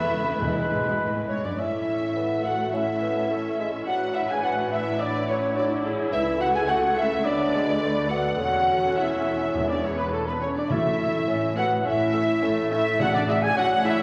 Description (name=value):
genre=quick classical-period movement for symphony orchestra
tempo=105 BPM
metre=4/4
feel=straight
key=A major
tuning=A4 = 440 Hz
part: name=rich studio violin section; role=melody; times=0.0-14.0 s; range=A4 to G#5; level=-37 LUFS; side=equal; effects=none
part: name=clear studio violin section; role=second line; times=0.0-14.0 s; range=E4 to G#5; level=-35 LUFS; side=equal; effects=none
part: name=silver concert flute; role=second line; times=0.0-14.0 s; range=A4 to B5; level=-36 LUFS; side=equal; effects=none
part: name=warm clarinet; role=second line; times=0.0-1.3 s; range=B4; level=-34 LUFS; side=equal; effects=none
part: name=dark bassoon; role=accompaniment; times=0.0-14.0 s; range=E3 to D4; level=-33 LUFS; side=equal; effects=none
part: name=warm studio viola section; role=accompaniment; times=0.0-13.9 s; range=G#3 to B4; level=-36 LUFS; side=equal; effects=none
part: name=mellow French horn section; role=sustained chords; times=0.0-14.0 s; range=E3 to G#4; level=-32 LUFS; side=equal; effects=none
part: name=rich studio cello section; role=bass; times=0.0-14.0 s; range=C#2 to B2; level=-36 LUFS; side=equal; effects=none
part: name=rich studio double bass section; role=bass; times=0.0-14.0 s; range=E1 to D2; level=-40 LUFS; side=equal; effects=none
part: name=timpani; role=percussion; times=0.0-1.2, 9.5-13.8 s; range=E2 to A2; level=-34 LUFS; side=equal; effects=none
part: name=mellow trumpet section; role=stabs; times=1.3-14.0 s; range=A4 to G#5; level=-29 LUFS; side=equal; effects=none
room=wet concert hall reverb, RT60 2.2 s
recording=vinyl crackle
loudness=-24 LUFS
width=mono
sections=0.0-1.6 A section; 1.6-14.0 B section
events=none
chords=0.4 E; 1.6 A; 3.9 E7/A; 6.1 A/C#; 7.3 Bm7/D; 8.4 A/E; 9.6 E; 10.7 A; 13.0 Dmaj9#11/A